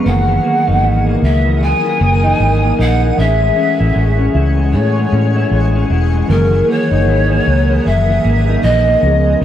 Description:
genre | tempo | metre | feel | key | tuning
indie pop | 77 BPM | 4/4 | swing 60% on 16ths | unclear | A4 = 439 Hz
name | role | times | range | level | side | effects
electric guitar through a small old amp | accompaniment | 0.0-9.4 s | F#2 to E#4 | -18 LUFS | left 1 dB | lush chorus, vibrato effect
warbly lo-fi synth keys | accompaniment | 0.0-9.4 s | D#3 to G#4 | -21 LUFS | right 3 dB | chorus
shimmering ambient pad | sustained chords | 0.0-9.4 s | G#4 to D#6 | -25 LUFS | left 2 dB | chorus, built-in reverb
breathy mellow pan flute | melody | 0.1-9.4 s | A#4 to G#5 | -17 LUFS | left 1 dB | lush chorus, slapback echo
vintage muted fingered electric bass | bass | 0.1-9.4 s | E1 to A2 | -14 LUFS | equal | none
room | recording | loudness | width
light reverb | dry, close 1970s-style studio recording | -11 LUFS | side -11 dB against mid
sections
0.0-9.4 A section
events
none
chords
0.1 F#13; 3.2 Amaj7; 6.3 F#13

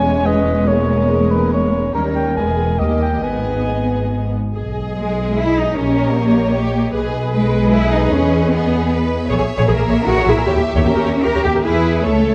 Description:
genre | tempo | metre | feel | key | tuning
classical | 134-157 BPM | 3/4 | rubato | G# minor | A4 = 442 Hz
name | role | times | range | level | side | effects
warm symphonic violin section | melody | 0.0-12.3 s | A#4 to E5 | -32 LUFS | equal | none
dark cor anglais | second line | 0.0-4.3 s | A#4 to G#5 | -24 LUFS | equal | none
rich studio violin section | second line | 0.0-12.3 s | C#4 to C#5 | -29 LUFS | equal | none
warm clarinet | second line | 0.0-4.3 s | G#4 to C#5 | -26 LUFS | equal | none
rich symphonic viola section | accompaniment | 0.0-12.3 s | G3 to C#5 | -25 LUFS | equal | none
mellow French horn section | sustained chords | 0.0-4.3 s | G3 to C#4 | -25 LUFS | equal | none
rich symphonic cello section | bass | 0.0-12.3 s | D#2 to A#4 | -22 LUFS | equal | none
rich symphonic double bass section | bass | 0.0-12.3 s | E1 to E2 | -22 LUFS | equal | none
room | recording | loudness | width
moderate scoring stage reverb, RT60 1.6 s | dark, warm production | -17 LUFS | mono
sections
0.0-4.6 A section; 4.6-12.3 B section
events
none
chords
0.0 C#m/E; 0.7 A#m7b5/E; 1.9 D#7; 2.4 E; 2.8 D#; 3.2 G#m; 4.6 G#m/B; 5.8 D#7/A#; 6.9 G#m/B; 8.1 Emaj7; 9.3 A#m7b5; 10.5 D#7b9; 11.6 E

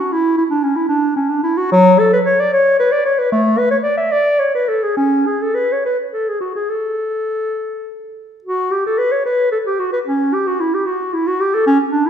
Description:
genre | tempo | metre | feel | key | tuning
classical, baroque-style fantasia for unaccompanied clarinet | 67-77 BPM (dotted quarters) | 6/8 | rubato | A major | A4 = 440 Hz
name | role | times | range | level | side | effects
mellow clarinet | solo | 0.0-12.1 s | F#3 to E5 | -14 LUFS | equal | none
room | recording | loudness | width
wet recital hall reverb, RT60 1.5 s | heard from further back in the room | -14 LUFS | side -8 dB against mid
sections
0.0-8.4 A section; 8.4-12.1 A section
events
none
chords
none

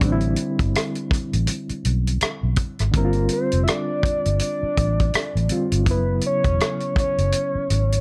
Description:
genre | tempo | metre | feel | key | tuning
R&B, neo-soul | 82 BPM | 4/4 | swing 59% on 16ths | unclear | A4 = 440 Hz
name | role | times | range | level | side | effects
overdriven reed electric piano | accompaniment | 0.0-8.0 s | C#3 to E#4 | -29 LUFS | equal | fast tremolo
vintage muted fingered electric bass | bass | 0.0-8.0 s | E1 to B1 | -24 LUFS | equal | none
warm soul drum kit | drums | 0.0-8.0 s | hi-hat, kick drum, rim click | -26 LUFS | equal | none
soft octave-layered synth lead | melody | 3.0-8.0 s | A#4 to E5 | -27 LUFS | equal | chorus, phaser
room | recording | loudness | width
light reverb | dark, warm production | -22 LUFS | mono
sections
0.0-8.0 A section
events
none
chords
0.0 Am9; 2.9 Gsus2; 5.9 F#sus2

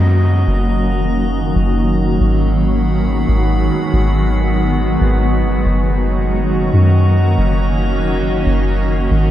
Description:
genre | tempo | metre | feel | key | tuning
hip hop | 139 BPM | 4/4 | half-time | F# major | A4 = 440 Hz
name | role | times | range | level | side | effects
granular cloud pad | sustained chords | 0.0-9.3 s | D#3 to F#4 | -17 LUFS | equal | built-in reverb, low-pass filter
soft 808-style bass | bass | 0.0-9.3 s | E#1 to F#2 | -15 LUFS | equal | none
downlifter | sound effects | 0.0-2.2 s | none | -34 LUFS | left 1 dB | none
drifting glass-harmonics texture | texture | 0.0-9.3 s | F#4 to B5 | -26 LUFS | equal | chorus, built-in reverb
room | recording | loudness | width
digital ambience | none | -13 LUFS | side -12 dB against mid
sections
0.0-9.3 A section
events
filter sweep on ambient pad 0.0-9.3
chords
0.0 F#6; 2.2 G#m7; 5.7 F#6

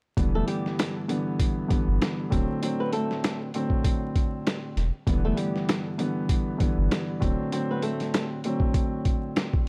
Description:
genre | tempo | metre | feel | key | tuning
hip hop, boom-bap hip-hop | 98 BPM | 4/4 | swing 56% on 16ths | E minor | A4 = 440 Hz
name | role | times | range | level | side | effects
dark grand piano | accompaniment | 0.2-9.7 s | G2 to C4 | -31 LUFS | equal | cassette tape, high-pass filter, low-pass filter
soft dub sub bass | bass | 0.2-7.4 s | D1 to G1 | -28 LUFS | equal | none
boom bap sampler-style drum kit | drums | 0.2-9.7 s | hi-hat, kick drum, snare drum | -29 LUFS | equal | none
flamenco guitar | melody | 0.4-8.3 s | G3 to B4 | -36 LUFS | equal | high-pass filter, low-pass filter, tape echo
room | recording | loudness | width
digital ambience | dry, gritty hardware recording, vinyl crackle | -27 LUFS | mono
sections
0.2-9.7 A section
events
none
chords
0.2 Em7; 2.3 D7; 5.1 Em7; 7.2 D7

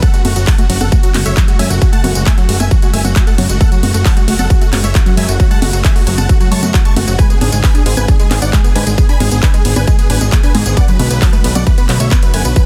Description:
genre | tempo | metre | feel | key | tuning
uplifting trance | 134 BPM | 4/4 | straight | F# minor | A4 = 440 Hz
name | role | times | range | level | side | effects
big supersaw lead | melody | 0.0-12.6 s | F#4 to C#6 | -24 LUFS | equal | sidechain pumping, digital delay
unison pluck | arpeggios | 0.0-12.6 s | F#3 to D4 | -24 LUFS | equal | sidechain pumping
big-room dance drum kit | drums | 0.0-12.7 s | congas, handclaps, hi-hat, ride cymbal, tambourine | -22 LUFS | equal | none
electronic kick drum | drums | 0.0-12.7 s | none | -13 LUFS | equal | none
fat analog bass | bass | 0.2-12.5 s | F#1 to G#2 | -17 LUFS | equal | sidechain pumping
room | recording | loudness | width
little or no reverb | dense, heavily limited modern master | -12 LUFS | mono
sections
0.0-12.7 A section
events
none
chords
0.0 F#madd9; 7.2 G#dim; 10.8 Bm7

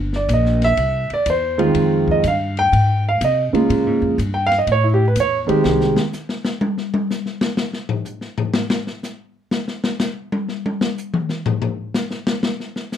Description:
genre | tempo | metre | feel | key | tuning
jazz piano trio | 124 BPM | 4/4 | swing 67% on 8ths | unclear | A4 = 438 Hz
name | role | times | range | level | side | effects
upright bass | bass | 0.0-6.0 s | G1 to C3 | -20 LUFS | equal | none
open jazz drum kit | drums | 0.1-13.0 s | hi-hat, kick drum, ride cymbal, snare drum, toms | -22 LUFS | left 3 dB | none
warm concert grand piano | melody | 0.2-6.0 s | Db3 to G5 | -17 LUFS | right 2 dB | none
room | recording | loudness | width
moderate small room reverb, RT60 0.6 s | none | -17 LUFS | side -9 dB against mid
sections
0.0-13.0 A section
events
grand piano solo 0.0-13.0; drum solo 5.6-13.0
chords
0.0 Gm; 0.8 C; 1.8 Fm7; 3.7 Bbm7; 4.7 A5; 5.6 N.C.

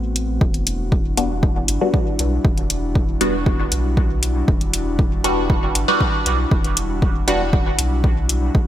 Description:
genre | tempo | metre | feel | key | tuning
dub techno | 118 BPM | 4/4 | straight | E minor | A4 = 438 Hz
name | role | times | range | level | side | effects
airy breathy pad | sustained chords | 0.0-8.7 s | G3 to G4 | -27 LUFS | equal | chorus, sidechain pumping
soft dub sub bass | bass | 0.0-8.7 s | E1 to B1 | -23 LUFS | equal | sidechain pumping
electronic hi-hat | drums | 0.2-8.4 s | none | -21 LUFS | left 1 dB | overdrive
electronic kick drum | drums | 0.4-8.7 s | none | -19 LUFS | equal | overdrive
filtered dub chord stab | stabs | 1.2-7.4 s | G3 to F#4 | -22 LUFS | equal | phaser, sidechain pumping, dub echo
room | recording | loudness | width
light reverb | bright 1980s-style digital production | -16 LUFS | side -12 dB against mid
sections
0.4-8.7 A section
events
none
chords
0.4 Em9

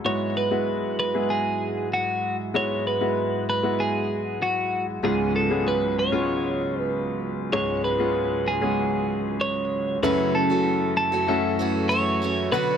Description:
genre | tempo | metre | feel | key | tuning
pop | 96 BPM | 4/4 | straight | F# minor | A4 = 438 Hz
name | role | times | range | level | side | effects
clear concert grand piano | accompaniment | 0.0-12.8 s | C#2 to C#5 | -25 LUFS | left 2 dB | none
mellow tonewheel organ | sustained chords | 0.0-12.8 s | F#2 to B4 | -33 LUFS | right 1 dB | slow rotary speaker
twelve-string electric guitar | melody | 0.1-12.8 s | F#4 to C#5 | -25 LUFS | right 2 dB | none
picked steel-string acoustic guitar | riff | 10.0-12.8 s | F#2 to F#4 | -27 LUFS | right 5 dB | none
room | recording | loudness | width
light reverb | none | -22 LUFS | side -8 dB against mid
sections
0.0-10.0 A section; 10.0-12.8 B section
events
none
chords
0.1 Eadd9/G#; 5.0 C#7; 10.0 F#m7

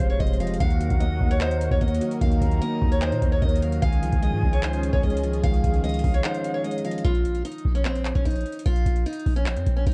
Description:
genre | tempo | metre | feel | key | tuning
hip hop, trap | 149 BPM | 4/4 | half-time | Bb minor | A4 = 440 Hz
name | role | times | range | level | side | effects
picked acoustic archtop guitar | melody | 0.0-9.9 s | C4 to F5 | -32 LUFS | equal | low-pass filter, analog delay
jazz flute | second line | 0.0-7.0 s | Eb5 to Bb5 | -38 LUFS | equal | analog delay
dark grand piano | accompaniment | 0.0-7.1 s | C3 to Eb5 | -31 LUFS | equal | low-pass filter
warm analog pad | sustained chords | 0.0-7.0 s | C3 to C5 | -38 LUFS | equal | chorus
long sustained 808-style bass | bass | 0.0-9.9 s | F1 to Bb2 | -28 LUFS | equal | none
booming analog drum machine | drums | 0.0-9.9 s | handclaps, hi-hat, kick drum | -26 LUFS | equal | overdrive, vintage 12-bit sampler grit
room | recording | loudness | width
light reverb, small room ambience | dark, warm production | -23 LUFS | mono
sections
0.0-7.0 A section; 7.0-9.9 B section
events
break 6.2-7.0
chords
0.0 Fm; 0.6 Ebm; 3.8 Dbadd9; 7.0 Bb5

